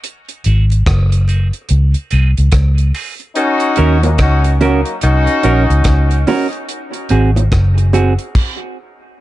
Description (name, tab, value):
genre	dub reggae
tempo	72 BPM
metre	4/4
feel	swing 62% on 16ths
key	unclear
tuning	A4 = 441 Hz
part	damped 70s drum kit	drums	0.0-8.6 s	crash cymbal, hi-hat, kick drum, rim click	-18 LUFS	equal	none
part	semi-hollow electric guitar	accompaniment	0.5-8.1 s	C4 to Bb4	-19 LUFS	right 4 dB	high-pass filter, dub echo
part	vintage muted fingered electric bass	bass	0.5-8.2 s	Gb1 to Eb2	-11 LUFS	equal	none
part	bongos	percussion	0.7-8.2 s	none	-22 LUFS	right 3 dB	high-pass filter on perc, dub echo
part	clear horn section	second line	3.4-6.2 s	Gb3 to Gb4	-17 LUFS	left 2 dB	high-pass filter, dub echo
room	light reverb, studio ambience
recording	dark, warm production, nothing above 10.4 kHz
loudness	-11 LUFS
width	side -16 dB against mid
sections	0.0-9.2 A section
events	stop 8.3-9.2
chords	0.0 Ab7; 1.7 Dbmaj7; 3.4 Ebm7; 6.7 Ab7; 8.3 N.C.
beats	| 0.03 0.86 1.70 2.53 | 3.36 4.19 5.02 5.85 | 6.69 7.52 8.35